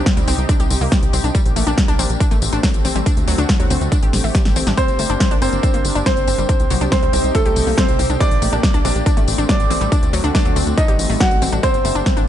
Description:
uplifting trance; 140 BPM; 4/4; straight; G harmonic minor; A4 = 440 Hz
lush unison pad; sustained chords; 0.0-12.3 s; C3 to G4; -25 LUFS; left 1 dB; chorus, sidechain pumping
wide unison pluck; arpeggios; 0.0-12.2 s; F#3 to G4; -24 LUFS; left 2 dB; sidechain pumping, dub echo
tight sequencer bass; bass; 0.0-12.2 s; G1 to Eb2; -21 LUFS; equal; sidechain pumping
big-room dance drum kit; drums; 0.1-12.3 s; hi-hat, snare drum, tambourine; -23 LUFS; left 1 dB; overdrive
electronic kick drum; drums; 0.1-12.1 s; -17 LUFS; equal; overdrive
clear grand piano; second line; 4.8-12.2 s; A3 to F#5; -20 LUFS; right 1 dB; dub echo
little or no reverb; nothing above 10.7 kHz; -14 LUFS; side -11 dB against mid
0.0-12.3 A section
drum fill 4.1-4.8
0.0 Cm; 1.3 Gm/Bb; 2.2 Am7; 3.1 D7; 3.9 Am7; 4.8 Gm; 6.5 Cm; 8.2 Gm/Bb; 9.1 Am7; 9.9 D7; 10.8 Am7b5; 11.6 Gm

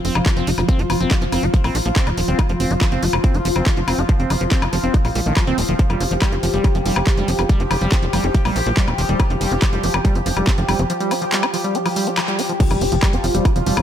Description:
psychedelic trance; 141 BPM; 4/4; straight; A4 = 440 Hz
bubbling stepped-filter texture; sustained chords; 0.0-13.8 s; F3 to G4; -23 LUFS; left 1 dB; chorus, built-in reverb, sidechain pumping
liquid acid bass; riff; 0.0-13.8 s; Eb3 to F4; -24 LUFS; equal; chorus, auto-pan, sidechain pumping, ping-pong delay
tight sequencer bass; bass; 0.0-13.8 s; Eb1 to Bb1; -21 LUFS; equal; tube saturation
techno drum kit; drums; 0.0-13.8 s; crash cymbal, handclaps, hi-hat, woodblock; -24 LUFS; left 3 dB; overdrive, studio reverb
electronic kick drum; drums; 0.3-13.5 s; -17 LUFS; equal; studio reverb
impact; sound effects; 12.7-13.8 s; -29 LUFS; right 1 dB
light reverb, digital ambience; -16 LUFS; side -10 dB against mid
0.0-12.6 A section; 12.6-13.8 B section
band accent 12.2; drop 12.6-13.8; impact 12.6-13.8
0.0 F5

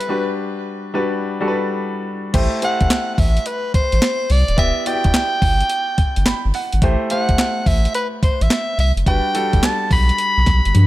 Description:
R&B, new jack swing; 107 BPM; 4/4; swing 66% on 16ths; A dorian; A4 = 439 Hz
clear soprano saxophone; melody; 0.0-10.9 s; B4 to B5; -21 LUFS; equal; digital delay
clear baby grand piano; accompaniment; 0.0-10.9 s; G3 to B5; -23 LUFS; left 1 dB
clean 12-bit digital drum machine; drums; 0.0-10.9 s; crash cymbal, handclaps, hi-hat, kick drum, snare drum, toms; -19 LUFS; equal
round analog bass; bass; 2.3-10.9 s; D#1 to G2; -16 LUFS; equal
digital ambience; -16 LUFS; side -16 dB against mid
0.0-2.3 A section; 2.3-10.9 B section
grand piano fill 6.0-6.8
0.1 Gmaj7; 2.3 Am7; 4.6 Em7; 6.8 Am7; 9.1 Gmaj7

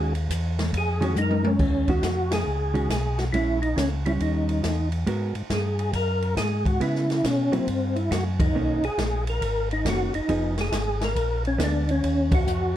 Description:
soul jazz organ trio; 138 BPM; 4/4; swing 66% on 8ths; Eb minor; A4 = 440 Hz
percussive tonewheel organ; melody; 0.0-12.8 s; C4 to Bb4; -26 LUFS; equal; slow rotary speaker, chorus vibrato, plate reverb
hollow-body jazz guitar; accompaniment; 0.0-11.9 s; Eb3 to Bb4; -28 LUFS; right 3 dB
mellow tonewheel organ; bass; 0.0-12.8 s; F1 to Db3; -26 LUFS; equal; overdrive, chorus vibrato, slow rotary speaker
open jazz drum kit; drums; 0.1-12.6 s; crash cymbal, hi-hat, kick drum, ride cymbal, snare drum, toms; -28 LUFS; equal
light reverb; dark, warm production; -22 LUFS; side -12 dB against mid
0.0-1.6 A section; 1.6-12.8 B section
tonewheel organ solo 0.0-1.6; drum fill 1.2-1.6; band accent 2.2, 8.3, 12.2
0.0 Ebm11; 3.3 Bbm7b5; 4.2 Eb7b9; 5.1 Abm9; 6.8 Dbm7; 7.7 Emadd9; 8.5 Bmaj9; 10.3 Fm7b5; 11.2 Bb7b9; 12.0 Ebm9

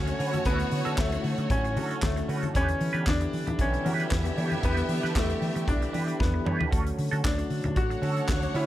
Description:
disco; 115 BPM; 4/4; straight; E dorian; A4 = 440 Hz
clear grand piano; melody; 0.0-8.7 s; A3 to F#4; -32 LUFS; left 1 dB
rich studio string section; second line; 0.0-8.7 s; A3 to F#5; -34 LUFS; right 2 dB
mellow tine electric piano; accompaniment; 0.0-8.7 s; D3 to C#5; -36 LUFS; left 4 dB; medium stereo tremolo
warm French horn section; sustained chords; 0.0-8.7 s; D3 to C#5; -38 LUFS; right 2 dB
hollow-body short-scale fingered electric bass; bass; 0.0-8.7 s; A1 to E3; -30 LUFS; equal
clean electric guitar; accompaniment; 0.1-8.7 s; C#4 to C#5; -36 LUFS; right 5 dB; wah, lush chorus
modern studio drum kit; drums; 0.1-8.7 s; handclaps, hi-hat, kick drum, snare drum, toms; -30 LUFS; equal
congas; percussion; 0.3-8.4 s; -37 LUFS; left 3 dB
light reverb, studio ambience; -24 LUFS; side -14 dB against mid
0.0-8.7 A section
drum fill 6.2-6.7
0.0 Dmaj7; 2.5 Em7; 6.7 Dmaj7

